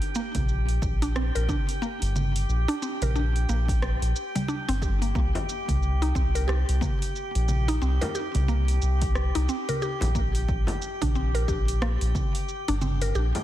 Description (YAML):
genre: organic downtempo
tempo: 90 BPM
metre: 4/4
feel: swing 60% on 16ths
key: unclear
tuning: A4 = 438 Hz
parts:
  - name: afro-pop drum kit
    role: drums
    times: 0.0-13.4 s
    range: congas, hi-hat, rim click, shaker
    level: -34 LUFS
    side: right 2 dB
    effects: small room ambience, soft clipping on snare
  - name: drifting glass-harmonics texture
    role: texture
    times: 0.0-13.4 s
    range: G4 to G5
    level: -34 LUFS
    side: left 1 dB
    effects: chorus, built-in reverb
  - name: mallet-like synth pluck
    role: arpeggios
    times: 0.2-13.3 s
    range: G3 to Bb4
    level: -32 LUFS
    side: equal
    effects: chorus, digital delay
  - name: round analog bass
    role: bass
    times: 0.4-13.3 s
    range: G1 to C2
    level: -24 LUFS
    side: equal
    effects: sidechain pumping
  - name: electronic kick drum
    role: drums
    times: 0.4-12.3 s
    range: none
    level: -29 LUFS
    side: equal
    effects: overdrive, small room ambience
  - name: frame drum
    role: percussion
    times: 5.3-13.4 s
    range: none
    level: -33 LUFS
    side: left 2 dB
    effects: none
room: light reverb, digital ambience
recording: dense, heavily limited modern master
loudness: -23 LUFS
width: side -13 dB against mid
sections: 0.0-13.4 A section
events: none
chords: 0.0 Bb; 5.2 C5; 10.5 N.C.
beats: 0.49 1.15 1.82 | 2.49 3.15 3.82 4.49 | 5.15 5.82 6.49 7.15 | 7.82 8.49 9.15 9.82 | 10.49 11.15 11.82 12.49 | 13.15